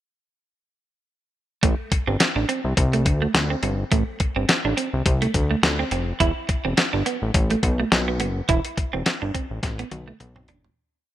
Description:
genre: early-eighties boogie funk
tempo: 105 BPM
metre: 4/4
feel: swing 56% on 16ths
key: A minor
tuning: A4 = 440 Hz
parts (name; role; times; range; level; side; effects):
- electric guitar at the edge of break-up; riff; 1.6-10.6 s; A3 to E4; -27 LUFS; right 5 dB; wide subtle chorus
- fat analog bass; bass; 1.6-10.7 s; E1 to D2; -24 LUFS; left 1 dB; none
- clean 12-bit digital drum machine; drums; 1.6-10.8 s; hi-hat, kick drum, snare drum, toms; -22 LUFS; left 1 dB; none
room: light reverb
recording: bright 1980s-style digital production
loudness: -20 LUFS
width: side -13 dB against mid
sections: 1.6-10.8 breakdown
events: fade-out 8.5-10.8; drum fill 9.6-10.8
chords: 1.6 Am7; 6.2 Esus4

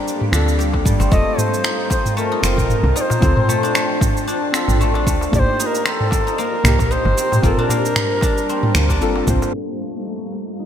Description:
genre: organic downtempo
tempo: 114 BPM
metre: 4/4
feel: swing 56% on 16ths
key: unclear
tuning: A4 = 440 Hz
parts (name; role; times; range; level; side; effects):
- deep mellow chord stab; accompaniment; 0.0-10.7 s; Bb3 to C5; -27 LUFS; left 1 dB; chorus, sidechain pumping, ping-pong delay, shimmer reverb
- granular cloud pad; sustained chords; 0.0-10.7 s; G3 to A5; -27 LUFS; right 1 dB; built-in reverb, sidechain pumping, shimmer reverb
- guzheng; arpeggios; 0.0-10.7 s; G3 to G4; -23 LUFS; left 3 dB; low-pass filter, ping-pong delay, shimmer reverb
- afro-pop drum kit; drums; 0.1-10.7 s; finger snaps, shaker, toms; -22 LUFS; right 1 dB; small room ambience, gated reverb
- darbuka; percussion; 0.2-10.4 s; none; -26 LUFS; left 2 dB; none
- woody FM bass; bass; 0.3-9.4 s; F1 to G2; -18 LUFS; equal; none
- electronic kick drum; drums; 0.7-9.4 s; none; -19 LUFS; equal; small room ambience
- bright Native American-style cedar flute; melody; 1.1-9.0 s; A4 to Eb5; -23 LUFS; equal; digital delay, shimmer reverb
room: moderate lush hall reverb, RT60 2.5 s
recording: bright 1980s-style digital production, low-pass filter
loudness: -15 LUFS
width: side -9 dB against mid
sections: 0.0-9.5 A section; 9.5-10.7 B section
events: filter sweep on guzheng 9.5-10.7; filter sweep on synth stab 9.5-10.7; filter sweep on ambient pad 9.5-10.7; filter sweep 9.5-10.7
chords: 0.0 Gm7; 1.1 F7; 3.2 Dm7; 5.3 Cm; 9.5 F7

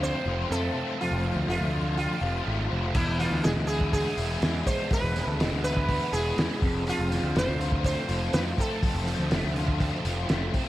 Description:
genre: psychedelic rock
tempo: 122 BPM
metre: 4/4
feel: straight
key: unclear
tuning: A4 = 440 Hz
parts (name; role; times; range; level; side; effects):
- sitar; melody; 0.0-10.3 s; E4 to C5; -32 LUFS; right 2 dB; tape echo
- overdriven electric guitar; riff; 0.0-10.7 s; E2 to F4; -30 LUFS; left 1 dB; rotary speaker
- fuzz picked electric bass; bass; 0.0-10.5 s; E1 to F2; -29 LUFS; equal; overdrive
- cloth-damped thuddy drum kit; drums; 2.9-10.7 s; crash cymbal, hi-hat, kick drum, snare drum; -29 LUFS; equal; none
room: small room ambience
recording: none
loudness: -24 LUFS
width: side -15 dB against mid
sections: 0.0-10.7 A section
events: none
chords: 0.0 F; 3.0 E; 6.6 F

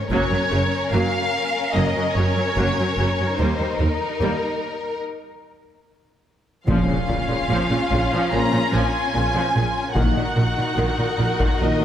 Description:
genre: cinematic, epic orchestral film score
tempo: 73 BPM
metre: 4/4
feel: straight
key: Bb minor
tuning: A4 = 440 Hz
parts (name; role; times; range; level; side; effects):
- warm symphonic violin section; second line; 0.0-11.8 s; Db4 to Bb4; -27 LUFS; left 2 dB; none
- rich studio violin section; melody; 0.1-11.8 s; Bb4 to Bb5; -25 LUFS; left 1 dB; none
- clear symphonic viola section; accompaniment; 0.1-11.8 s; Db3 to Eb4; -27 LUFS; right 1 dB; none
- clear symphonic cello section; bass; 0.1-11.8 s; Eb2 to Bb2; -26 LUFS; right 2 dB; none
- rich symphonic double bass section; bass; 0.1-11.7 s; Gb1 to Eb2; -26 LUFS; right 2 dB; none
- taiko ensemble; drums; 0.1-1.7, 6.7-11.8 s; none; -26 LUFS; left 1 dB; none
- clear trombone section; sustained chords; 6.7-11.8 s; Bb2 to F3; -29 LUFS; right 2 dB; none
- mellow French horn section; sustained chords; 6.7-11.8 s; Bb3 to Eb4; -29 LUFS; left 4 dB; none
- timpani; percussion; 6.7-7.9 s; Bb2; -27 LUFS; equal; none
- impact; sound effects; 6.7-10.0 s; none; -31 LUFS; left 1 dB; none
room: moderate concert hall reverb, RT60 1.9 s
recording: none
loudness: -19 LUFS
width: side -10 dB against mid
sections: 0.0-6.7 A section; 6.7-11.8 B section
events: break 5.0-6.7; impact 6.7-10.0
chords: 0.1 Gb; 3.4 Eb; 5.0 N.C.; 6.7 Bbm; 10.0 Ebm/Bb

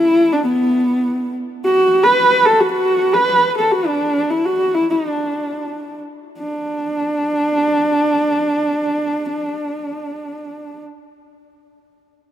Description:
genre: mongolian traditional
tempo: free time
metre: none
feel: none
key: D gong mode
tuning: A4 = 442 Hz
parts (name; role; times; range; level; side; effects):
- dark horsehead fiddle; melody; 0.0-10.8 s; B3 to B4; -15 LUFS; equal; none
room: moderate huge ambient reverb, RT60 4.2 s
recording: minimal, uncompressed stereo recording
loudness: -15 LUFS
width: side -10 dB against mid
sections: 0.0-6.4 A section; 6.4-12.1 B section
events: slowing down 1.6-6.4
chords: none

